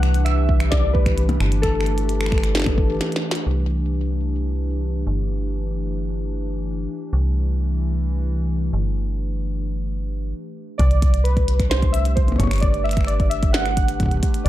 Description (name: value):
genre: IDM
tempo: 131 BPM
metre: 4/4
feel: straight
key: C major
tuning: A4 = 441 Hz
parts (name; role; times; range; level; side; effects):
- warbly lo-fi synth keys; melody; 0.0-3.0, 10.8-14.5 s; A4 to F#5; -26 LUFS; equal; chorus, vintage 12-bit sampler grit, ping-pong delay
- warbly tape-like pad; sustained chords; 0.0-14.5 s; E3 to B4; -28 LUFS; left 1 dB; chorus, built-in reverb
- metallic FM bass; bass; 0.0-14.5 s; G1 to C2; -21 LUFS; equal; none
- glitchy drum kit; drums; 0.0-3.4, 10.8-14.5 s; finger snaps, hi-hat, percussion blips, snare drum; -27 LUFS; left 1 dB; none
- electronic kick drum; drums; 0.5-2.9, 10.8-14.3 s; none; -20 LUFS; equal; none
room: digital ambience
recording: dark, warm production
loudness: -18 LUFS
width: side -14 dB against mid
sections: 0.0-3.5 A section; 3.5-10.8 B section; 10.8-14.5 C section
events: break 3.0-3.5; drum fill 3.0-3.5; stop 10.3-10.8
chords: 0.0 Cmaj9; 1.4 Gadd9; 3.5 Cmaj9; 5.1 Gadd9; 7.1 Cmaj9; 8.7 Gadd9; 10.8 Csus2; 12.4 Gmaj9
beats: 0.26 0.72 1.18 | 1.63 2.09 2.55 3.01 | 3.47 3.92 4.38 4.84 | 5.30 5.76 6.21 6.67 | 7.13 7.59 8.05 8.50 | 8.96 9.42 9.88 10.34 | 10.79 11.25 11.71 12.17 | 12.63 13.08 13.54 14.00 | 14.46